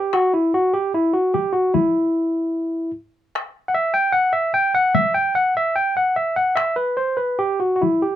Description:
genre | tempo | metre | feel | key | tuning
japanese traditional, Japanese chamber music | 74 BPM | 4/4 | rubato | E hirajoshi | A4 = 440 Hz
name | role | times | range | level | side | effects
barky tine electric piano | melody | 0.0-8.2 s | E4 to G5 | -17 LUFS | equal | none
taiko ensemble | percussion | 0.1-8.0 s | none | -23 LUFS | left 3 dB | none
room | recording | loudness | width
light reverb | minimal, uncompressed stereo recording | -17 LUFS | side -11 dB against mid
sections
0.0-8.2 A section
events
none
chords
none

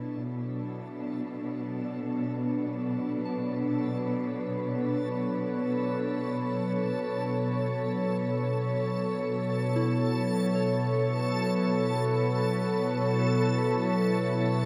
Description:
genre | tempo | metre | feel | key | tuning
ambient | free time | none | none | B minor | A4 = 440 Hz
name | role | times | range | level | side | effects
warm analog pad | sustained chords | 0.0-14.7 s | B2 to C#5 | -31 LUFS | equal | chorus
soft synth bell | arpeggios | 0.0-14.7 s | E4 to A5 | -45 LUFS | equal | none
dark studio cello section | bass | 0.0-14.7 s | B2 | -41 LUFS | equal | none
analog drone | drone | 0.0-14.7 s | B3 to B4 | -36 LUFS | equal | chorus
backwards swelling texture | texture | 0.0-14.7 s | A4 to A5 | -41 LUFS | equal | built-in reverb
room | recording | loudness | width
wet shimmer reverb, RT60 8.1 s | none | -29 LUFS | mono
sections
0.0-14.7 A section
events
fade-in on synth texture 0.0-14.7; fade-out on cello section 0.0-14.7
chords
0.0 Bm7; 11.0 F#m7/B

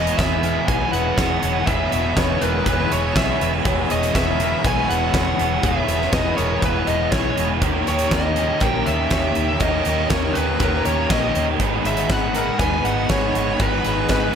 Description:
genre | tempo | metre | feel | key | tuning
rock, shoegaze and dream pop | 121 BPM | 4/4 | straight | E lydian | A4 = 440 Hz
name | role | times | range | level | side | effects
fuzz lead guitar | melody | 0.0-14.4 s | B4 to G#5 | -24 LUFS | equal | distortion, slapback echo
string machine, violins | sustained chords | 0.0-14.4 s | G#4 to E6 | -32 LUFS | equal | ensemble chorus
picked twelve-string acoustic guitar | arpeggios | 0.0-14.4 s | G#4 to C#5 | -30 LUFS | left 5 dB | lush chorus, slapback echo
biting overdriven guitar | riff | 0.0-14.4 s | E2 to G#4 | -24 LUFS | right 12 dB | reverse reverb
overdriven electric guitar | riff | 0.0-14.3 s | G#2 to B4 | -27 LUFS | left 1 dB | none
overdriven semi-hollow guitar | riff | 0.0-14.4 s | E2 to G#4 | -27 LUFS | left 11 dB | ensemble chorus
vintage muted fingered electric bass | bass | 0.0-14.3 s | E1 to D#2 | -26 LUFS | equal | none
huge arena drum kit | drums | 0.1-14.2 s | hi-hat, kick drum, snare drum | -24 LUFS | equal | none
room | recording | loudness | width
light reverb, small room ambience | none | -17 LUFS | side -7 dB against mid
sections
0.0-14.4 A section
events
none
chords
0.0 E6; 7.6 D#7; 11.6 G#m7

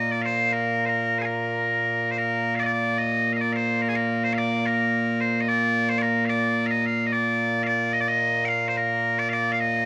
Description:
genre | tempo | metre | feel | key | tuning
scottish traditional, Scottish pipe music | 73 BPM (dotted quarters) | 6/8 | straight | Bb major | A4 = 439 Hz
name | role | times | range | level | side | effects
loud bright bagpipes | solo | 0.0-9.9 s | Bb2 to G5 | -24 LUFS | equal | cassette tape
room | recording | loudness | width
moderate spring reverb, RT60 2.0 s, small room ambience | home recording on cassette | -24 LUFS | mono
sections
0.0-2.2 A section; 2.2-9.9 B section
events
none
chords
none

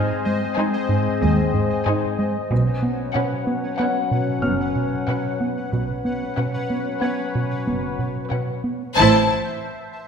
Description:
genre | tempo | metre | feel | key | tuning
cinematic, suspense film score | 93 BPM | 5/4 | straight | unclear | A4 = 439 Hz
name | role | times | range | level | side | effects
warm symphonic violin section | melody | 0.0-9.3 s | F#5 to A5 | -24 LUFS | left 6 dB | none
warm studio violin section | second line | 0.0-9.3 s | B4 to B#4 | -27 LUFS | right 2 dB | none
warm studio viola section | accompaniment | 0.0-9.3 s | C#4 to E4 | -27 LUFS | left 1 dB | none
pulsing gated texture | sustained chords | 0.0-9.3 s | B4 to G#5 | -29 LUFS | left 1 dB | chorus, built-in reverb
warm French horn section | sustained chords | 0.0-9.2 s | E3 to C#4 | -27 LUFS | left 6 dB | none
rubbery square bass | riff | 0.0-8.8 s | G#2 to B3 | -24 LUFS | right 2 dB | none
bright grand piano | texture | 0.0-9.0 s | C#5 to G#6 | -33 LUFS | left 4 dB | none
dark chamber double bass section | bass | 1.2-9.3 s | F#1 to D#2 | -25 LUFS | right 3 dB | none
warm symphonic cello section | bass | 1.2-9.3 s | D#2 to B2 | -26 LUFS | right 3 dB | none
room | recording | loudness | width
wet scoring stage reverb, RT60 1.6 s | minimal, uncompressed stereo recording | -19 LUFS | side -6 dB against mid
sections
0.0-9.0 A section; 9.0-10.1 B section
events
none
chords
0.0 G#; 2.5 Bsus2; 9.0 Am

